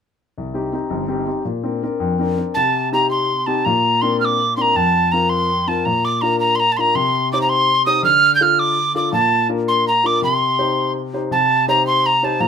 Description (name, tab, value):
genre	celtic folk, Celtic jig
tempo	110 BPM (dotted quarters)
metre	6/8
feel	straight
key	C dorian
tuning	A4 = 441 Hz
part	warm concert grand piano	accompaniment	0.4-12.5 s	G1 to C5	-20 LUFS	left 4 dB	none
part	tin whistle	melody	2.5-12.5 s	A5 to G6	-15 LUFS	right 2 dB	none
room	moderate studio ambience, RT60 0.5 s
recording	minimal, uncompressed stereo recording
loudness	-15 LUFS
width	side -7 dB against mid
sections	0.4-2.6 A section; 2.6-11.3 B section; 11.3-12.5 B section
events	none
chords	0.4 Cm; 1.5 Bbadd9; 2.6 Cm; 3.6 Bbadd9; 4.7 Fsus4; 5.8 Bb; 6.9 Cm; 8.0 Dm; 9.1 Bb; 10.2 Cm